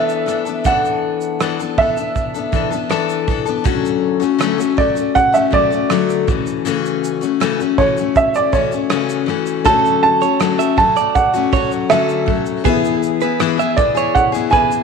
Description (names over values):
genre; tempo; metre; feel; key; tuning
acoustic pop; 80 BPM; 4/4; straight; unclear; A4 = 440 Hz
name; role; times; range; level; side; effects
warm upright piano; melody; 0.0-14.8 s; C#5 to A5; -16 LUFS; right 3 dB; none
picked steel-string acoustic guitar; accompaniment; 0.0-14.8 s; C#3 to A4; -18 LUFS; left 10 dB; none
soft brush drum kit; drums; 0.1-14.8 s; kick drum, rim click, shaker; -22 LUFS; right 4 dB; none
felt-muted upright piano; accompaniment; 9.6-14.8 s; A3 to E5; -26 LUFS; left 9 dB; none
direct-recorded clean electric guitar; arpeggios; 9.7-14.7 s; G#4 to E5; -22 LUFS; right 12 dB; none
room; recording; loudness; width
moderate echo chamber reverb, RT60 2.2 s; 1960s-style stereo with parts hard left and right; -14 LUFS; side -5 dB against mid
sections
0.0-3.7 A section; 3.7-14.8 B section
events
none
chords
0.0 E7sus4; 3.7 Dmaj7; 6.3 A6/C#; 9.7 Dmaj7; 12.7 E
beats
| 0.65 1.40 2.15 2.91 | 3.66 4.41 5.16 5.91 | 6.66 7.41 8.16 8.91 | 9.66 10.41 11.16 11.91 | 12.66 13.40 14.15